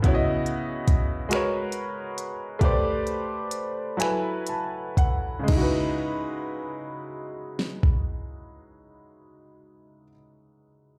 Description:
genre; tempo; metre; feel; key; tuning
slow six-eight R&B; 38-48 BPM (dotted quarters); 6/8; straight; C# minor; A4 = 439 Hz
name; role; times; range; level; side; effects
clear grand piano; accompaniment; 0.0-11.0 s; C#3 to A5; -30 LUFS; equal; slapback echo
smooth R&B drum kit; drums; 0.0-8.1 s; crash cymbal, finger snaps, hi-hat, kick drum, snare drum; -25 LUFS; equal; none
room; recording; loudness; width
light reverb; live gig heard through the venue's PA, club reverb; -27 LUFS; mono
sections
0.0-5.5 A section; 5.5-8.6 B section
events
slowing down 0.0-5.5; grand piano fill 4.0-5.5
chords
0.0 C#m11; 1.3 G#m11; 2.6 Am11; 4.0 F#m11; 5.5 C#m11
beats
| 0.04 1.30 | 2.61 3.99 | 5.49 7.05

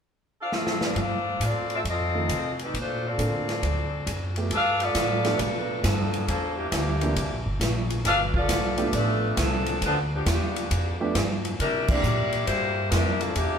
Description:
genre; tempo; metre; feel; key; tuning
jazz, big band swing; 136 BPM; 4/4; swing 66% on 8ths; G mixolydian; A4 = 440 Hz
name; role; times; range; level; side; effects
warm saxophone section; melody; 0.4-13.6 s; E3 to F5; -26 LUFS; left 1 dB; none
swinging big-band drum kit; drums; 0.5-13.5 s; crash cymbal, hi-hat, kick drum, ride cymbal, snare drum; -29 LUFS; equal; none
upright bass; bass; 1.0-13.6 s; G1 to C3; -28 LUFS; equal; none
warm grand piano; accompaniment; 2.1-12.0 s; D3 to A4; -31 LUFS; right 4 dB; none
room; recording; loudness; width
wet large studio reverb, RT60 1.3 s; band playing live in one room; -23 LUFS; side -7 dB against mid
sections
1.0-4.5 A section; 4.5-13.6 B section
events
drum fill 0.5-1.0; band accent 11.8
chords
0.0 C69; 1.0 G9sus4; 1.9 F7; 2.7 Bbmaj9; 3.6 D7; 4.5 G9; 6.3 C9; 8.1 G9; 11.6 C9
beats
0.08 0.52 | 0.97 1.41 1.85 2.29 | 2.74 3.18 3.62 4.07 | 4.51 4.95 5.39 5.84 | 6.28 6.72 7.17 7.61 | 8.05 8.50 8.94 9.38 | 9.82 10.27 10.71 11.15 | 11.60 12.04 12.48 12.93 | 13.37

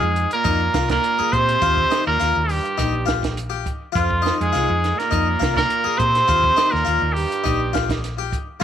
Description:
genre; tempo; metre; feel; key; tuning
afrobeat; 103 BPM; 4/4; straight; unclear; A4 = 440 Hz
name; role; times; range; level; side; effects
bright trumpet; melody; 0.0-8.0 s; F4 to C5; -20 LUFS; equal; none
clear baritone saxophone; second line; 0.0-8.6 s; F2 to C3; -29 LUFS; right 11 dB; none
raspy alto saxophone; second line; 0.0-8.0 s; F3 to C4; -30 LUFS; right 11 dB; none
hollow-body short-scale fingered electric bass; bass; 0.0-8.6 s; Bb1 to Bb2; -24 LUFS; equal; none
compact cocktail drum kit; drums; 0.2-8.5 s; hi-hat, kick drum, snare drum; -26 LUFS; right 3 dB; none
harpsichord; arpeggios; 0.4-8.6 s; Eb4 to Ab4; -26 LUFS; left 13 dB; tape echo
room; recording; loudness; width
wet spring reverb, RT60 1.5 s; 1960s-style stereo with parts hard left and right; -17 LUFS; side -10 dB against mid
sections
0.0-8.6 A section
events
none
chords
0.0 Fm7; 1.6 Eb; 4.0 Fm7; 6.3 Eb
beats
0.46 1.04 | 1.63 2.21 2.79 3.38 | 3.96 4.54 5.12 5.70 | 6.29 6.87 7.45 8.03 | 8.62

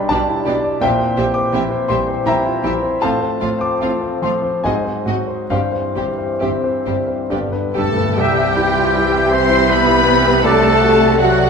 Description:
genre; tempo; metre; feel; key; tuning
classical; 65-85 BPM; 3/4; rubato; C major; A4 = 441 Hz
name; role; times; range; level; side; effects
clear concert grand piano; melody; 0.0-11.5 s; B1 to D6; -19 LUFS; left 1 dB; none
warm French horn section; sustained chords; 0.0-10.7 s; D3 to G4; -26 LUFS; left 2 dB; none
warm symphonic violin section; melody; 0.1-11.5 s; B4 to C6; -22 LUFS; left 4 dB; none
warm symphonic violin section; second line; 0.1-11.5 s; F4 to C5; -23 LUFS; left 2 dB; none
dark symphonic viola section; accompaniment; 0.1-11.5 s; F#3 to D4; -22 LUFS; right 2 dB; none
dark symphonic double bass section; bass; 0.1-11.5 s; G1 to C2; -27 LUFS; right 4 dB; none
rich symphonic cello section; bass; 0.1-11.5 s; G2 to C3; -25 LUFS; right 3 dB; none
timpani; percussion; 7.3-8.2 s; G2; -26 LUFS; left 1 dB; none
clear oboe; second line; 7.8-11.5 s; F#4 to C5; -23 LUFS; right 3 dB; none
mellow clarinet; second line; 8.2-11.5 s; D5 to E5; -26 LUFS; left 4 dB; none
silver concert flute; second line; 8.2-11.5 s; F#6 to G6; -22 LUFS; left 1 dB; none
warm bassoon; accompaniment; 8.2-11.5 s; E3 to A3; -23 LUFS; equal; none
warm trumpet section; stabs; 8.2-10.7 s; D5 to E5; -24 LUFS; right 2 dB; none
room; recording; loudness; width
moderate scoring stage reverb, RT60 1.7 s; minimal, uncompressed stereo recording; -14 LUFS; side -5 dB against mid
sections
0.0-8.2 A section; 8.2-11.5 B section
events
timpani fill 7.3-8.2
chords
0.0 G/B; 0.8 C7/Bb; 3.0 F/A; 4.7 Ab7; 5.5 C/G; 7.3 G; 8.2 C; 10.4 D7/C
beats
0.11 | 0.82 1.53 2.26 | 3.02 3.82 4.65 | 5.51 6.42 7.32 | 8.20 8.96 9.70 | 10.45 11.19

